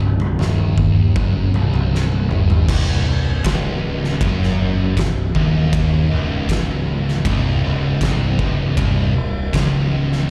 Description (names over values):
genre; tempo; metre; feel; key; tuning
stoner and doom metal; 79 BPM; 4/4; straight; unclear; A4 = 440 Hz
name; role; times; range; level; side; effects
thick fuzz guitar; riff; 0.0-10.3 s; C2 to G2; -24 LUFS; equal; distortion
growling picked electric bass; bass; 0.0-10.3 s; C1 to G1; -24 LUFS; equal; overdrive
oversized low-tuned drum kit; drums; 0.0-10.2 s; crash cymbal, kick drum, ride cymbal, snare drum, toms; -22 LUFS; equal; none
distorted electric guitar; riff; 2.7-10.3 s; C2 to F#2; -26 LUFS; equal; overdrive
room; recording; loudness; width
small room ambience; live gig heard through the venue's PA, recital hall reverb; -18 LUFS; mono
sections
0.0-2.7 A section; 2.7-10.3 B section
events
drum fill 1.9-2.7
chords
0.0 Cm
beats
0.40 1.16 1.92 | 2.69 3.45 4.21 4.97 | 5.73 6.50 7.26 8.02 | 8.78 9.54